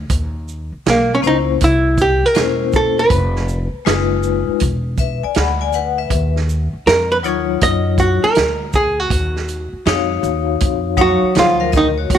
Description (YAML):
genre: hip hop, jazz-hop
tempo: 80 BPM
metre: 4/4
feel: swing 64% on 16ths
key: Eb minor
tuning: A4 = 440 Hz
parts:
  - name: upright bass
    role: bass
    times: 0.0-12.2 s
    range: E1 to Gb2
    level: -20 LUFS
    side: equal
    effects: none
  - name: vintage drum kit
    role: drums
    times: 0.1-12.2 s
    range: hi-hat, kick drum, shaker, snare drum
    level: -20 LUFS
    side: right 2 dB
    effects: none
  - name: archtop guitar, miked and amplified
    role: melody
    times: 0.9-12.2 s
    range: Bb3 to Eb5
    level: -16 LUFS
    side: right 1 dB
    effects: slapback echo
  - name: vibraphone with medium hard mallets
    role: accompaniment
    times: 1.2-12.2 s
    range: Gb3 to B5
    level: -19 LUFS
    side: left 14 dB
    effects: none
  - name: mellow trombone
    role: second line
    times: 11.0-12.2 s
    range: Eb3 to Gb3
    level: -20 LUFS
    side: right 10 dB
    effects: none
room: light reverb, studio ambience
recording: 1960s-style stereo with parts hard left and right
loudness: -14 LUFS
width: side -9 dB against mid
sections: 0.1-12.1 A section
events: hollow-body jazz guitar solo 0.1-12.1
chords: 0.1 Eb5; 1.6 C7b9; 3.1 Fm7b5; 4.6 E9; 6.1 Ebm9